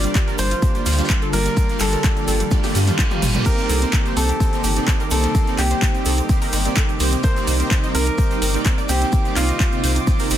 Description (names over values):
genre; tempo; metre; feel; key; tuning
progressive house; 127 BPM; 4/4; straight; C dorian; A4 = 437 Hz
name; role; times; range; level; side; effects
bright grand piano; melody; 0.0-10.4 s; F4 to D5; -26 LUFS; left 1 dB; sidechain pumping, dub echo
shimmering ambient pad; sustained chords; 0.0-10.4 s; C3 to G4; -28 LUFS; equal; chorus, built-in reverb, sidechain pumping
wide unison pluck; arpeggios; 0.0-10.4 s; G3 to Eb5; -29 LUFS; equal; sidechain pumping, dub echo
soft supersaw; stabs; 0.0-10.4 s; Bb3 to F5; -26 LUFS; right 4 dB; lush chorus, sidechain pumping, dub echo
round analog bass; bass; 0.0-10.4 s; G1 to G2; -20 LUFS; equal; sidechain pumping
deep house drum kit; drums; 0.0-10.4 s; crash cymbal, handclaps, hi-hat, toms; -25 LUFS; equal; overdrive, sidechain pumping on hats, small room reverb, sidechain pumping on toms, sidechain pumping on cymbals
tube shaker; percussion; 0.0-10.4 s; none; -35 LUFS; right 5 dB; none
electronic kick drum; drums; 0.2-10.2 s; none; -19 LUFS; equal; small room reverb
oversized low-tuned drum kit; drums; 0.2-10.4 s; hi-hat, shaker, snare drum; -34 LUFS; equal; none
reverse cymbal; sound effects; 2.7-3.5 s; none; -30 LUFS; right 3 dB; none
drifting glass-harmonics texture; texture; 4.0-10.4 s; D6; -34 LUFS; right 5 dB; chorus, built-in reverb, sidechain pumping
room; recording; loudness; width
small room ambience; dense, heavily limited modern master; -16 LUFS; side -11 dB against mid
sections
0.0-10.4 A section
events
drum fill 2.5-3.5; reverse cymbal 2.7-3.5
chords
0.0 Gm7; 3.5 Cm7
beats
0.15 0.62 1.10 | 1.57 2.04 2.51 2.99 | 3.46 3.93 4.40 4.88 | 5.35 5.82 6.29 6.77 | 7.24 7.71 8.18 8.66 | 9.13 9.60 10.07